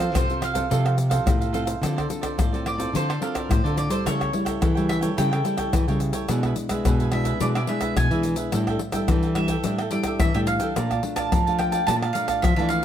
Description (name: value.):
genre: samba and choro.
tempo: 108 BPM.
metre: 4/4.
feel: straight.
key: D minor.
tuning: A4 = 440 Hz.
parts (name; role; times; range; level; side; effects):
bowl-back mandolin; melody; 0.0-12.8 s; Bb4 to A5; -28 LUFS; right 2 dB; none.
cavaquinho; accompaniment; 0.0-12.7 s; D4 to A5; -30 LUFS; right 7 dB; none.
nylon-string guitar; accompaniment; 0.0-12.8 s; A2 to A4; -28 LUFS; left 2 dB; none.
nylon-string guitar; bass; 0.0-12.8 s; A2 to F3; -26 LUFS; equal; none.
egg shaker, surdo, pandeiro and tamborim; percussion; 0.1-12.8 s; none; -26 LUFS; left 2 dB; none.
room: moderate studio reverb, RT60 0.8 s.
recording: none.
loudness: -21 LUFS.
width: side -10 dB against mid.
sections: 0.0-1.8 A section; 1.8-12.8 B section.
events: none.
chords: 0.0 F; 1.8 Dm7; 4.1 A7/C#; 6.3 E7/B; 8.5 A7sus4; 10.8 Bbmaj7.